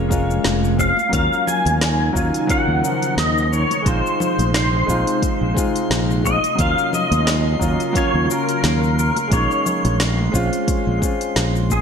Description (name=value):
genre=sunset chillout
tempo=88 BPM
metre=4/4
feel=swing 56% on 16ths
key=Eb dorian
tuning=A4 = 442 Hz
part: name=pedal steel guitar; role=melody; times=0.0-11.8 s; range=Ab4 to Ab5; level=-21 LUFS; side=equal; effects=ensemble chorus, digital delay
part: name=clear grand piano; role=accompaniment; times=0.0-11.8 s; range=F3 to F4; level=-24 LUFS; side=moving between left 6 dB and right 2 dB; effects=auto-pan, low-pass filter, digital delay
part: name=ethereal airy pad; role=sustained chords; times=0.0-11.8 s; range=C3 to F4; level=-26 LUFS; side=equal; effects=ensemble chorus, built-in reverb
part: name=fretless electric bass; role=bass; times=0.0-11.8 s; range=F1 to Eb2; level=-20 LUFS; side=equal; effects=none
part: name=deep house drum kit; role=drums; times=0.1-11.8 s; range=cabasa, hi-hat, snare drum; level=-25 LUFS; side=left 1 dB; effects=studio reverb, gated reverb
part: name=electronic kick drum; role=drums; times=0.1-11.8 s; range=none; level=-23 LUFS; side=equal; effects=studio reverb
part: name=congas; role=percussion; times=0.8-11.8 s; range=none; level=-30 LUFS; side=left 3 dB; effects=none
part: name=drifting glass-harmonics texture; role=texture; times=2.3-11.8 s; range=C6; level=-33 LUFS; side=equal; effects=chorus, built-in reverb
room=moderate lush hall reverb, RT60 1.9 s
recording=bright 1980s-style digital production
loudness=-16 LUFS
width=side -7 dB against mid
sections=0.0-11.8 A section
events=none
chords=0.0 Bbm7; 1.1 Ebm9; 3.9 Bb9sus4; 6.6 Ebm9; 9.3 Bbm9